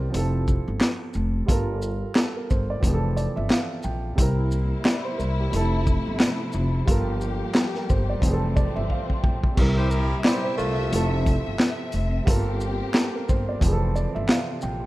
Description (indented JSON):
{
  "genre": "hip hop, boom-bap hip-hop",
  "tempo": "89 BPM",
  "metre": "4/4",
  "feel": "swing 59% on 16ths",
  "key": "F major",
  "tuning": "A4 = 440 Hz",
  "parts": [
    { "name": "dark grand piano", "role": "accompaniment", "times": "0.0-14.9 s", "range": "C3 to G5", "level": "-29 LUFS", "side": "right 3 dB", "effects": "cassette tape" },
    { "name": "upright bass", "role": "bass", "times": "0.0-14.9 s", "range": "F1 to C2", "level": "-25 LUFS", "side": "equal", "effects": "none" },
    { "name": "crunchy breakbeat drum kit", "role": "drums", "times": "0.1-14.8 s", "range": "crash cymbal, handclaps, hi-hat, kick drum, shaker, snare drum", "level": "-23 LUFS", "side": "equal", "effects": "none" },
    { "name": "warm studio string section", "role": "sustained chords", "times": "4.2-14.9 s", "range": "Bb2 to E5", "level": "-32 LUFS", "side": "left 2 dB", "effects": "none" },
    { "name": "dark saxophone section", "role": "stabs", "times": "9.8-11.2 s", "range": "A3 to C5", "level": "-29 LUFS", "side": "left 1 dB", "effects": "digital delay" }
  ],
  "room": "studio reverb",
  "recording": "rough home demo mix",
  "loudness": "-21 LUFS",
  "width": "side -18 dB against mid",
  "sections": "0.0-9.6 A section; 9.6-14.9 B section",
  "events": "drum fill 8.9-9.6",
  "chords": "0.1 Fmaj7; 1.5 Gm9; 2.8 Fmaj7; 4.2 C7; 5.5 Fmaj7; 6.9 Gm9; 8.2 Fmaj7; 9.6 C7; 10.9 Fmaj7; 12.3 Gm9; 13.6 Fmaj7"
}